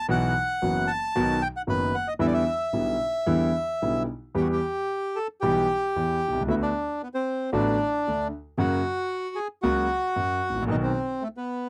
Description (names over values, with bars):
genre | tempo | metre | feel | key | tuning
tango | 114 BPM | 4/4 | rubato | E minor | A4 = 440 Hz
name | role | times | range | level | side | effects
bandoneon | melody | 0.0-11.7 s | A3 to A5 | -28 LUFS | equal | none
clear concert grand piano | accompaniment | 0.1-10.9 s | F#1 to G4 | -28 LUFS | equal | none
room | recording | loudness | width
light reverb | dry, close 1970s-style studio recording | -26 LUFS | mono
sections
0.0-4.3 A section; 4.3-11.7 A section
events
none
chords
0.1 Bsus4; 1.2 B; 2.2 Em7; 4.3 Em; 6.5 D6; 8.6 F#; 10.7 B